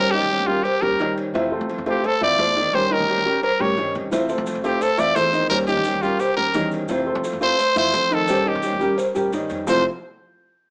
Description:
latin, Cuban son and guajira; 173 BPM; 4/4; straight; A4 = 440 Hz
growling trumpet; melody; 0.0-9.8 s; F4 to D5; -19 LUFS; equal
nylon-string guitar; accompaniment; 0.0-9.8 s; F2 to G4; -26 LUFS; equal
dark grand piano; arpeggios; 0.0-9.8 s; Eb3 to E5; -24 LUFS; equal
upright bass; bass; 0.0-9.8 s; F1 to F3; -32 LUFS; equal
cowbell and bongos; percussion; 0.3-9.8 s; -28 LUFS; equal
maracas; percussion; 4.1-9.8 s; -39 LUFS; equal
moderate studio reverb, RT60 0.9 s; small speaker sound; -18 LUFS; side -38 dB against mid
0.0-9.7 A section; 9.7-10.7 B section
0.0 Eb7; 1.3 Fmaj7; 2.7 Eb7; 4.1 Fmaj7; 5.5 Eb7; 6.9 Fmaj7; 8.3 Eb7; 9.7 Fmaj7
0.31 0.66 1.00 | 1.35 1.70 2.04 2.39 | 2.74 3.08 3.43 3.78 | 4.12 4.47 4.82 5.17 | 5.51 5.86 6.21 6.55 | 6.90 7.25 7.59 7.94 | 8.29 8.64 8.98 9.33 | 9.68

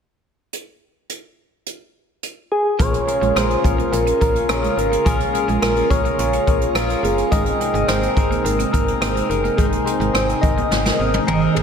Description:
1980s-style pop; 106 BPM; 4/4; straight; Bb minor; A4 = 439 Hz
jazz brush drum kit; drums; 0.5-11.6 s; hi-hat, kick drum, rim click, snare drum, toms; -21 LUFS; right 1 dB
soft struck synth lead; melody; 2.5-11.6 s; Ab4 to Eb5; -21 LUFS; equal; chorus, slapback echo, ping-pong delay, shimmer reverb
barky tine electric piano; accompaniment; 2.8-11.6 s; Ab2 to C5; -23 LUFS; left 3 dB; phaser, slapback echo, shimmer reverb
lush unison pad; sustained chords; 2.8-11.6 s; C3 to F4; -27 LUFS; right 1 dB; chorus, shimmer reverb
twelve-string electric guitar; riff; 2.8-11.6 s; Ab3 to Db4; -28 LUFS; right 5 dB; wide subtle chorus, slapback echo, shimmer reverb
slap-like FM bass; bass; 2.8-11.6 s; Gb1 to Bb1; -24 LUFS; equal
wet lush hall reverb, RT60 2.4 s; big arena sound; -16 LUFS; side -7 dB against mid
0.5-2.8 A section; 2.8-11.6 B section
drum fill 10.7-11.6
0.5 N.C.; 2.8 Bbm7; 7.3 Abadd9
| 0.53 1.09 1.66 2.23 | 2.79 3.36 3.92 4.49 | 5.06 5.62 6.19 6.75 | 7.32 7.89 8.45 9.02 | 9.58 10.15 10.72 11.28

